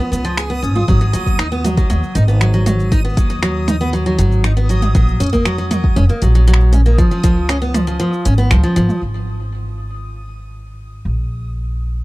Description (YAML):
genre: folktronica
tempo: 118 BPM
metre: 4/4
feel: straight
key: unclear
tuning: A4 = 442 Hz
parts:
  - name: picked steel-string acoustic guitar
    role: arpeggios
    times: 0.0-9.0 s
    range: E#3 to G#4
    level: -19 LUFS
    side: equal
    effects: tape echo
  - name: organic electronic drum kit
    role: drums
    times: 0.0-9.0 s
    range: finger snaps, hi-hat, shaker, toms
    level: -22 LUFS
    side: right 1 dB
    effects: none
  - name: backwards swelling texture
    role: texture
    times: 0.0-9.0 s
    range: D#6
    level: -30 LUFS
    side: equal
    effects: built-in reverb
  - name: upright bass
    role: bass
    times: 0.1-12.0 s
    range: E#1 to D#2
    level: -16 LUFS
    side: equal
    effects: none
  - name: electronic kick drum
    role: drums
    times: 0.9-7.3 s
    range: none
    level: -15 LUFS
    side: equal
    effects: none
room: little or no reverb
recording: dry, close 1970s-style studio recording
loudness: -13 LUFS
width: side -20 dB against mid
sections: 0.0-9.0 A section; 9.0-12.0 B section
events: band accent 8.5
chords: 0.0 C#7; 0.9 G#m7; 5.0 F#6; 7.0 C#; 9.0 N.C.